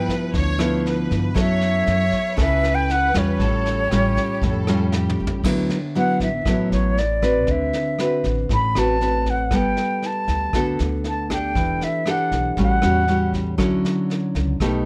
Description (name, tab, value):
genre	bossa nova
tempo	118 BPM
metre	4/4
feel	straight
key	D major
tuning	A4 = 440 Hz
part	concert flute	melody	0.0-13.3 s	C#5 to B5	-25 LUFS	equal	none
part	warm symphonic violin section	second line	0.0-5.4 s	G4 to C#5	-33 LUFS	equal	none
part	nylon-string guitar	accompaniment	0.0-14.9 s	G2 to B4	-24 LUFS	equal	none
part	upright bass	bass	0.0-14.8 s	E1 to G2	-26 LUFS	equal	none
part	vintage brush drum kit	drums	0.1-14.7 s	crash cymbal, kick drum, rim click, snare drum, toms	-30 LUFS	equal	none
room	little or no reverb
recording	close, detailed microphones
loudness	-21 LUFS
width	mono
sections	0.0-5.4 A section; 5.4-14.9 B section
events	drum fill 4.9-5.4; flute solo 5.4-14.9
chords	0.0 G6; 1.4 F#m7; 3.4 Aaug7; 5.4 D69; 7.5 D13; 9.5 Gmaj9; 11.6 Em11; 12.6 A6; 13.6 Dmaj9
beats	0.34 0.85 | 1.36 1.87 2.38 2.89 | 3.40 3.91 4.42 4.93 | 5.44 5.95 6.46 6.96 | 7.47 7.99 8.49 9.00 | 9.51 10.02 10.53 11.04 | 11.55 12.06 12.57 13.08 | 13.59 14.09 14.60